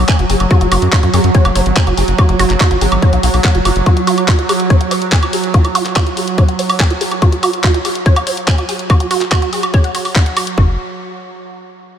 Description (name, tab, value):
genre	psychedelic trance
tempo	143 BPM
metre	4/4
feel	straight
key	unclear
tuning	A4 = 436 Hz
part	evolving wavetable pad	sustained chords	0.0-10.6 s	F#3	-19 LUFS	right 4 dB	chorus, built-in reverb, sidechain pumping
part	tight sequencer bass	bass	0.0-3.8, 10.6-10.8 s	F#1 to F#2	-15 LUFS	left 1 dB	tube saturation
part	woody wave-folded pluck	riff	0.1-10.8 s	F#4 to G#5	-19 LUFS	right 1 dB	chorus, auto-pan, vintage 12-bit sampler grit, sidechain pumping, analog delay
part	electronic kick drum	drums	0.1-10.7 s	none	-11 LUFS	equal	studio reverb
part	garage drum kit	drums	0.1-10.6 s	handclaps, hi-hat, woodblock	-18 LUFS	equal	studio reverb
room	moderate huge ambient reverb, RT60 3.9 s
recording	dreamy mix soaked in reverb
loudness	-11 LUFS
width	side -9 dB against mid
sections	0.0-10.6 A section; 10.6-12.0 B section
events	none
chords	0.0 F#5; 10.6 N.C.